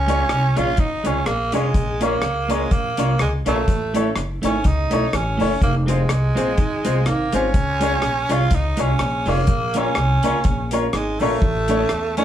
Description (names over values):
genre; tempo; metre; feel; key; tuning
ska; 124 BPM; 4/4; swing 56% on 8ths; Db major; A4 = 441 Hz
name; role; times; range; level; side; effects
raspy tenor saxophone; melody; 0.0-12.2 s; Ab3 to F4; -23 LUFS; right 2 dB; none
upright bass; bass; 0.0-12.2 s; F1 to E2; -22 LUFS; equal; none
clean electric guitar; accompaniment; 0.1-12.2 s; Ab3 to F4; -27 LUFS; right 2 dB; spring reverb
bright upright piano; stabs; 0.1-12.2 s; C4 to Db5; -24 LUFS; left 3 dB; none
deep reggae drum kit; drums; 0.1-12.2 s; hi-hat, kick drum, rim click; -22 LUFS; equal; none
room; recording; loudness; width
wet studio reverb, RT60 0.6 s; band playing live in one room; -17 LUFS; side -10 dB against mid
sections
0.0-12.2 A section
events
none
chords
0.0 Db; 1.7 Bbm; 3.7 A; 5.6 Fm; 7.5 Db; 9.5 Bbm; 11.4 A